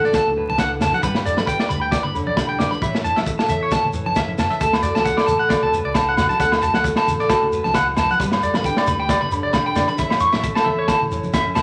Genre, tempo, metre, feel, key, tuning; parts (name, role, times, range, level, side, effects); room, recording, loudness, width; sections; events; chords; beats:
highlife guitar band; 134 BPM; 4/4; swing 55% on 16ths; D major; A4 = 440 Hz
nylon-string guitar; accompaniment; 0.0-11.6 s; A2 to C#5; -27 LUFS; equal
electric guitar at the edge of break-up; arpeggios; 0.0-11.6 s; C#5 to C#6; -23 LUFS; equal
fingered electric bass; bass; 0.0-11.6 s; E1 to F#2; -34 LUFS; equal
crunchy breakbeat drum kit; drums; 0.0-11.6 s; kick drum, snare drum; -26 LUFS; equal
shekere; percussion; 0.1-11.6 s; -33 LUFS; equal
congas; percussion; 0.3-11.6 s; -34 LUFS; equal
agogo bells; percussion; 4.7-11.6 s; -26 LUFS; equal
moderate large studio reverb, RT60 1.2 s; vinyl crackle; -19 LUFS; mono
0.0-11.6 A section
0.0 D; 1.0 G; 2.8 A; 4.6 D; 8.2 G; 10.0 A
0.14 0.59 | 1.03 1.48 1.93 2.37 | 2.82 3.27 3.71 4.16 | 4.61 5.06 5.50 5.95 | 6.40 6.85 7.29 7.74 | 8.19 8.64 9.09 9.54 | 9.99 10.44 10.89 11.34